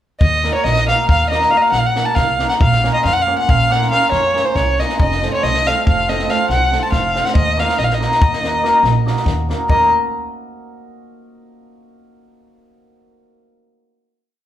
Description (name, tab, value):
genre	balkan folk, Balkan wedding band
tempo	280 BPM (eighths)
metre	11/8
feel	straight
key	Eb dorian sharp4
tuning	A4 = 440 Hz
part	dark violin	melody	0.2-9.9 s	C5 to A5	-17 LUFS	right 1 dB	none
part	upright bass	bass	0.2-9.9 s	F1 to F2	-20 LUFS	right 1 dB	none
part	compact cocktail drum kit	percussion	0.2-9.9 s	kick drum, snare drum	-20 LUFS	left 1 dB	none
part	cimbalom	accompaniment	0.4-9.9 s	A3 to Bb4	-19 LUFS	left 1 dB	none
room	moderate large studio reverb, RT60 1.3 s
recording	band playing live in one room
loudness	-13 LUFS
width	side -11 dB against mid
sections	0.2-9.7 A section; 9.7-12.0 final chord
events	none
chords	0.2 Ebm; 2.6 Bbm; 5.0 F; 7.3 Ebm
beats	| 0.21 0.43 0.65 0.86 1.08 1.30 1.52 1.74 1.96 2.17 2.39 | 2.61 2.83 3.04 3.26 3.48 3.70 3.91 4.13 4.35 4.56 4.78 | 4.99 5.21 5.42 5.64 5.85 6.07 6.28 6.50 6.71 6.92 7.14 | 7.35 7.56 7.78 7.99 8.20 8.41 8.63 8.84 9.05 9.26 9.48 | 9.69 9.90